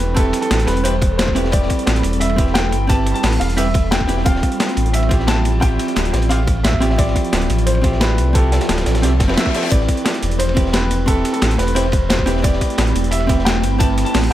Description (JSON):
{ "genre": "liquid drum and bass", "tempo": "176 BPM", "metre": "4/4", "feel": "straight", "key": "A minor", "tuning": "A4 = 440 Hz", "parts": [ { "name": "warm baby grand piano", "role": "melody", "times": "0.0-14.3 s", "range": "A4 to A5", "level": "-23 LUFS", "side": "equal", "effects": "digital delay" }, { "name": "vintage hollow-body jazz guitar", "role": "accompaniment", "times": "0.0-14.3 s", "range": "C4 to B4", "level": "-23 LUFS", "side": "right 1 dB", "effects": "dub echo" }, { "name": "ethereal airy pad", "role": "sustained chords", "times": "0.0-14.3 s", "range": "F3 to B5", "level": "-25 LUFS", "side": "right 2 dB", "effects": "ensemble chorus, built-in reverb, sidechain pumping" }, { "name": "sub bass with octave", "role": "bass", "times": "0.0-14.3 s", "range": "D1 to C2", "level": "-18 LUFS", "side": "equal", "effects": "tube saturation" }, { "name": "breakbeat sampler-style drum kit", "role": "drums", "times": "0.0-14.3 s", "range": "hi-hat, ride cymbal, snare drum", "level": "-22 LUFS", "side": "equal", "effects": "none" }, { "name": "crunchy breakbeat drum kit", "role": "drums", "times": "0.0-14.3 s", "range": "hi-hat, ride cymbal, snare drum", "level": "-28 LUFS", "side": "equal", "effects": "high-pass filter on cymbals, high-pass filter on hats, high-pass filter on snare, high-pass filter on room" }, { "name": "electronic kick drum", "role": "drums", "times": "0.2-13.9 s", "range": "none", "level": "-17 LUFS", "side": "equal", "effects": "overdrive" }, { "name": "reverse cymbal", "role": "sound effects", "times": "9.2-9.7 s", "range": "none", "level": "-28 LUFS", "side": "left 7 dB", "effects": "none" } ], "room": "light reverb, studio reverb", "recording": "none", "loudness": "-14 LUFS", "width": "side -13 dB against mid", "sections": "0.0-14.3 A section", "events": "reverse cymbal 9.2-9.7", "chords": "0.0 Am9; 4.3 Dm11; 9.7 Am9", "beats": "| 0.17 0.51 0.85 1.19 | 1.53 1.87 2.21 2.56 | 2.90 3.24 3.58 3.92 | 4.26 4.60 4.94 5.28 | 5.62 5.96 6.30 6.65 | 6.99 7.33 7.67 8.01 | 8.35 8.69 9.03 9.37 | 9.71 10.05 10.40 10.74 | 11.08 11.42 11.76 12.10 | 12.44 12.78 13.12 13.46 | 13.80 14.15" }